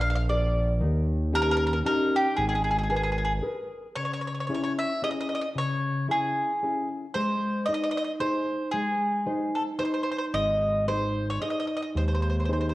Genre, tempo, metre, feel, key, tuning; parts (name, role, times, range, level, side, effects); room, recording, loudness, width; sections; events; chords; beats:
italian folk, Italian serenade; 113 BPM; 3/4; swing 54% on 8ths; G# minor, C# harmonic minor from 4.0 s; A4 = 440 Hz
mandolin; melody; 0.0-12.7 s; G4 to E#5; -28 LUFS; equal
nylon-string guitar; accompaniment; 0.0-12.7 s; C#3 to D5; -30 LUFS; left 1 dB
smooth synth bass; bass; 0.0-3.4, 10.3-12.7 s; G#1 to D#2; -27 LUFS; equal; transformer saturation
wet recital hall reverb, RT60 1.5 s; worn, warbling old tape, cassette tape, warbly pitch drift; -24 LUFS; side -17 dB against mid
0.0-4.0 A section; 4.0-12.7 B section
0.0 A#7; 0.8 D#7; 2.4 G#madd9; 4.0 C#m; 7.1 G#
0.30 | 0.82 1.34 1.86 | 2.38 2.90 3.43 | 3.97 4.50 5.03 | 5.56 6.09 6.62 | 7.15 7.67 8.20 | 8.73 9.26 9.80 | 10.34 10.88 11.42 | 11.96 12.49